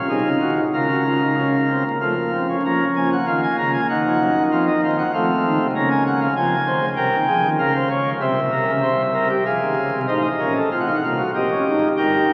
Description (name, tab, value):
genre	classical, baroque-style 4-part fugue for pipe organ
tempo	96 BPM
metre	3/4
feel	straight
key	Bb minor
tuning	A4 = 440 Hz
part	pipe organ, sparkling flutes	solo	0.0-12.3 s	G1 to Bb5	-20 LUFS	equal	none
room	wet cathedral reverb, RT60 6.2 s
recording	very old 78 rpm record, vinyl crackle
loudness	-20 LUFS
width	mono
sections	0.0-2.6 A section; 2.6-10.1 B section; 10.1-12.3 A section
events	none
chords	0.1 Cdim; 0.7 Bbm/Db; 2.0 F; 2.6 Bbm/F; 3.9 Ebm; 4.5 F7; 5.8 Bbm/Db; 6.4 Fm; 7.6 Bbm/Db; 8.2 C7; 9.5 Fm; 10.1 F7/A; 11.3 Bbm